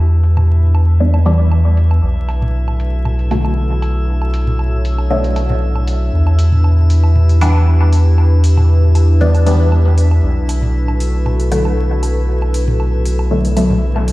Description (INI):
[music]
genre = dub techno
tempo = 117 BPM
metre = 4/4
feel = swing 53% on 16ths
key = E minor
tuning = A4 = 440 Hz
[part]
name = dark analog pad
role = sustained chords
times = 0.0-14.1 s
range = D4 to C#5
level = -25 LUFS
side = left 2 dB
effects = chorus
[part]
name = round analog bass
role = bass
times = 0.0-14.1 s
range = B1 to E2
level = -12 LUFS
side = equal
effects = none
[part]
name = drifting glass-harmonics texture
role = texture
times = 0.0-14.1 s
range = E4 to E5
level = -30 LUFS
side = right 1 dB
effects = chorus, built-in reverb
[part]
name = electronic hi-hat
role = drums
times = 0.2-14.1 s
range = none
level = -33 LUFS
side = equal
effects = low-pass filter on hats, low-pass filter on snare
[part]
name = electronic toms and woodblock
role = percussion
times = 0.4-14.1 s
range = none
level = -25 LUFS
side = right 1 dB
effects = dub echo
[part]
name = filtered dub chord stab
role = stabs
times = 1.0-13.8 s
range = B2 to D4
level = -20 LUFS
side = equal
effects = phaser, dub echo
[sound]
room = light reverb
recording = played on a big sound system in a bare room, large studio reverb, vinyl crackle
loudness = -11 LUFS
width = side -19 dB against mid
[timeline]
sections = 0.0-14.1 A section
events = filter sweep on drum 0.0-14.1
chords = 0.0 Em7; 2.0 Bm7; 6.1 Em7; 10.2 Bm7